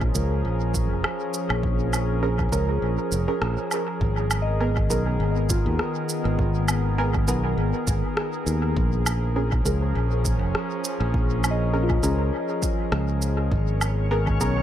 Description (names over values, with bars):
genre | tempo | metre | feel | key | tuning
ambient dub | 101 BPM | 4/4 | swing 55% on 16ths | G# dorian | A4 = 440 Hz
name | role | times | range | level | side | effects
warbly tape-like pad | sustained chords | 0.0-14.6 s | D#3 to A#4 | -28 LUFS | left 1 dB | chorus, built-in reverb
soft synth bell | arpeggios | 0.0-13.5 s | E#4 to D#5 | -35 LUFS | left 3 dB | chorus, analog delay
fingered electric bass | bass | 0.0-14.6 s | E#1 to D#2 | -24 LUFS | equal | none
electronic kick drum | drums | 0.0-14.4 s | none | -27 LUFS | equal | studio reverb
filtered dub chord stab | stabs | 0.1-14.5 s | B3 to A#4 | -30 LUFS | right 2 dB | lush chorus, dub echo
electronic shaker, rim click and woodblock | drums | 0.1-14.5 s | none | -31 LUFS | right 1 dB | studio reverb, dub echo
backwards swelling texture | texture | 13.7-14.6 s | C#4 to C#5 | -32 LUFS | left 2 dB | built-in reverb
room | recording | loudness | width
light reverb | echo-heavy mix | -21 LUFS | side -11 dB against mid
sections
0.0-4.0 A section; 4.0-14.6 B section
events
filter sweep on synth stab 0.0-4.0; kick drops out 2.8-4.0; band accent 3.4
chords
0.0 A#m7; 4.0 G#madd9; 8.8 A#m7; 13.5 G#madd9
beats
0.45 1.04 | 1.64 2.23 2.82 3.42 | 4.01 4.61 5.20 5.79 | 6.39 6.98 7.58 8.17 | 8.76 9.36 9.95 10.55 | 11.14 11.73 12.33 12.92 | 13.52 14.11